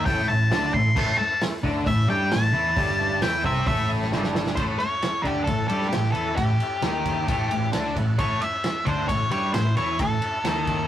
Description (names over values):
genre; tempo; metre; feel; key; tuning
blues rock power trio and southern rock; 133 BPM; 4/4; straight; A mixolydian; A4 = 439 Hz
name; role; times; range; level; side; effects
octave-fuzz lead guitar; melody; 0.0-10.9 s; G4 to C6; -25 LUFS; left 2 dB; distortion
sludgy distorted guitar; riff; 0.0-10.9 s; G2 to G4; -25 LUFS; equal; overdrive
growling fingered electric bass; bass; 0.0-10.9 s; G1 to G2; -31 LUFS; right 1 dB; overdrive
overdriven tonewheel organ; sustained chords; 0.1-10.8 s; A3 to A5; -36 LUFS; right 1 dB; slow rotary speaker, chorus vibrato
vintage drum kit; drums; 0.1-10.8 s; crash cymbal, hi-hat, kick drum, ride cymbal, snare drum; -28 LUFS; right 1 dB; none
room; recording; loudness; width
moderate small room reverb, RT60 0.5 s; rough rehearsal-room recording, warm saturation; -21 LUFS; side -11 dB against mid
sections
0.0-4.6 A section; 4.6-10.9 B section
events
lead electric guitar solo 0.0-4.6; drum fill 4.1-4.6; tonewheel organ fill 7.5-8.2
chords
0.0 A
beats
0.07 0.52 | 0.97 1.42 1.87 2.32 | 2.77 3.22 3.67 4.12 | 4.57 5.03 5.48 5.93 | 6.38 6.83 7.29 7.74 | 8.19 8.64 9.09 9.54 | 10.00 10.45